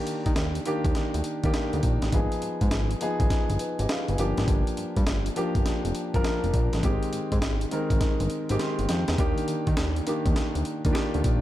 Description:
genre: R&B, new jack swing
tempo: 102 BPM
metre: 4/4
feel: swing 66% on 16ths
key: Eb major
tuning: A4 = 440 Hz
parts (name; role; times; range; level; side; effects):
- dark concert grand piano; accompaniment; 0.0-11.4 s; Eb3 to C6; -28 LUFS; equal; none
- fat analog bass; bass; 0.1-11.4 s; F1 to Eb3; -28 LUFS; equal; none
- breakbeat sampler-style drum kit; drums; 0.1-11.4 s; hi-hat, kick drum, snare drum; -27 LUFS; equal; none
room: little or no reverb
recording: none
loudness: -23 LUFS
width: side -14 dB against mid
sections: 0.0-11.4 A section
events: grand piano fill 8.3-9.2; drum fill 8.6-9.2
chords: 0.0 Ebmaj7; 2.1 Abm6; 4.2 Gm7; 6.8 Abmaj7; 9.2 Ebmaj7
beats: 0.36 0.95 1.54 | 2.12 2.71 3.30 3.89 | 4.48 5.07 5.66 6.24 | 6.83 7.42 8.01 8.60 | 9.18 9.77 10.36 10.95

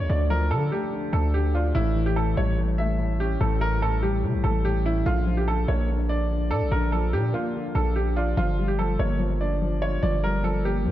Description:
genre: hip hop, drill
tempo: 145 BPM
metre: 4/4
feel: half-time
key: unclear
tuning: A4 = 440 Hz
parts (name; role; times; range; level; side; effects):
- clear upright piano; melody; 0.0-10.9 s; E4 to E5; -28 LUFS; right 2 dB; low-pass filter
- dark concert grand piano; accompaniment; 0.0-10.9 s; A2 to D5; -29 LUFS; left 4 dB; low-pass filter
- distorted 808-style bass; bass; 0.0-10.9 s; G1 to D3; -24 LUFS; equal; distortion
room: light reverb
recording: dark, warm production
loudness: -22 LUFS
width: side -13 dB against mid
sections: 0.0-10.9 A section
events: none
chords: 0.0 Dm; 1.8 A7; 5.1 Bb; 8.4 Gm7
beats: | 0.10 0.51 0.92 1.34 | 1.75 2.17 2.58 2.99 | 3.41 3.82 4.23 4.65 | 5.06 5.48 5.89 6.30 | 6.72 7.13 7.54 7.96 | 8.37 8.79 9.20 9.61 | 10.03 10.44 10.86

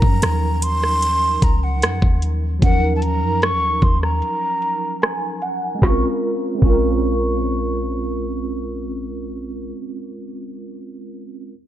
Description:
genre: contemporary R&B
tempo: 75 BPM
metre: 4/4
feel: straight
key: Bb minor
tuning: A4 = 441 Hz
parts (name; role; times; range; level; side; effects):
- breathy jazz flute; melody; 0.0-9.7 s; Gb5 to Db6; -23 LUFS; equal; none
- mellow tine electric piano; accompaniment; 0.0-11.5 s; F3 to Ab5; -24 LUFS; right 2 dB; ensemble chorus
- clean 808-style bass; bass; 0.0-9.7 s; Bb1 to Gb2; -22 LUFS; equal; none
- smooth R&B drum kit; drums; 0.0-6.8 s; crash cymbal, hi-hat, kick drum, rim click, snare drum; -18 LUFS; equal; none
room: little or no reverb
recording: low-pass filter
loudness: -17 LUFS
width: side -12 dB against mid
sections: 0.0-5.8 A section; 5.8-9.0 B section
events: filter sweep 0.0-5.8; break 4.2-5.8; tine electric piano fill 4.6-5.8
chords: 0.0 Ebm9; 5.8 Bbm9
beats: 0.22 1.02 1.82 | 2.62 3.42 4.22 5.02 | 5.82 6.62 7.42 8.22

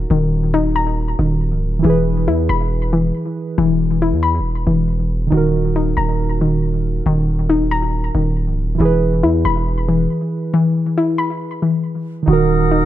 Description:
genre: hip hop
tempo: 138 BPM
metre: 4/4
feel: half-time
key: Eb phrygian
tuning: A4 = 437 Hz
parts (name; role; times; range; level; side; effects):
- muted felt-like synth keys; accompaniment; 0.0-12.9 s; Eb3 to B4; -22 LUFS; right 6 dB; chorus
- soft round pluck; arpeggios; 0.0-12.9 s; Eb3 to B5; -18 LUFS; left 3 dB; chorus, digital delay
- distorted 808-style bass; bass; 0.0-12.9 s; Db1 to E2; -19 LUFS; equal; distortion
- breathy small flute group; sustained chords; 12.3-12.9 s; Bb4 to Eb6; -21 LUFS; left 4 dB; none
room: light reverb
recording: none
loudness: -15 LUFS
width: side -13 dB against mid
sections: 0.0-12.3 A section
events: break 10.5-12.3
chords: 0.0 Ebm; 1.8 E; 5.3 Ebm; 8.8 E; 12.3 Ebm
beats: | 0.10 0.54 0.97 1.41 | 1.84 2.28 2.71 3.15 | 3.58 4.02 4.45 4.89 | 5.32 5.75 6.19 6.62 | 7.06 7.49 7.93 8.36 | 8.80 9.23 9.67 10.10 | 10.54 10.97 11.41 11.84 | 12.28 12.71

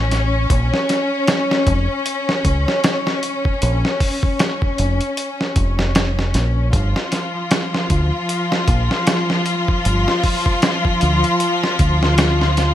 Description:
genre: trip hop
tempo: 77 BPM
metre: 4/4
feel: swing 58% on 16ths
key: unclear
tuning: A4 = 440 Hz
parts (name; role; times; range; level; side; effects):
- rich symphonic string section; sustained chords; 0.0-12.7 s; F3 to F4; -20 LUFS; left 2 dB; none
- deep dub fingered electric bass; bass; 0.0-12.7 s; F1 to D2; -18 LUFS; equal; none
- dusty soul sampler-style drum kit; drums; 0.1-12.7 s; hi-hat, kick drum, snare drum; -19 LUFS; equal; studio reverb
room: light reverb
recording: bright 1980s-style digital production, vinyl crackle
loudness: -15 LUFS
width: side -12 dB against mid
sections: 0.0-12.7 A section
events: none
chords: 0.0 N.C.; 0.5 Bbm (rootless); 6.7 G7(no3) (rootless)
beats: | 0.50 1.28 2.06 2.84 | 3.62 4.40 5.18 5.96 | 6.74 7.51 8.29 9.07 | 9.85 10.63 11.41 12.19

